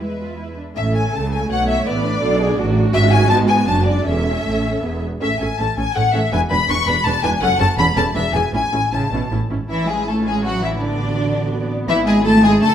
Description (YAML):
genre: quick classical-period movement for string orchestra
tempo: 153-171 BPM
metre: 3/4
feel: rubato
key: A major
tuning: A4 = 440 Hz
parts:
  - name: rich studio violin section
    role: melody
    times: 0.0-12.7 s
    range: D5 to C#6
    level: -22 LUFS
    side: left 5 dB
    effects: none
  - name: clear studio violin section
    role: second line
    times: 0.0-12.7 s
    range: D4 to C#6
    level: -24 LUFS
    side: left 1 dB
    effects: none
  - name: rich studio viola section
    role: accompaniment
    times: 0.0-12.7 s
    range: A3 to C#5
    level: -24 LUFS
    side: right 2 dB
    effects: none
  - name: rich studio cello section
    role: bass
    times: 0.0-12.7 s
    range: E2 to A3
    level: -21 LUFS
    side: right 1 dB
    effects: none
  - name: rich studio double bass section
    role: bass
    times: 0.0-12.7 s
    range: E1 to G#2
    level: -22 LUFS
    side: right 2 dB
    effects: none
room: moderate recital hall reverb, RT60 1.3 s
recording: none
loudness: -15 LUFS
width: side -9 dB against mid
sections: 0.8-9.7 A section; 9.7-12.7 A section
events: none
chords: 0.0 E; 0.8 A; 1.9 Bm7/A; 2.9 Amaj13/G#; 3.7 D/F#; 4.1 A/E; 4.8 E; 5.2 A; 6.3 E5; 7.4 F#m; 7.8 A; 8.2 E7; 8.5 A; 10.8 Bm7/A; 11.9 E/G#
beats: 0.38 | 0.76 1.14 1.50 | 1.86 2.22 2.57 | 2.93 3.30 3.67 | 4.06 4.45 4.83 | 5.21 5.59 5.96 | 6.32 6.69 7.05 | 7.42 7.78 8.15 | 8.53 8.93 9.32 | 9.70 10.07 10.45 | 10.81 11.17 11.53 | 11.89 12.25 12.62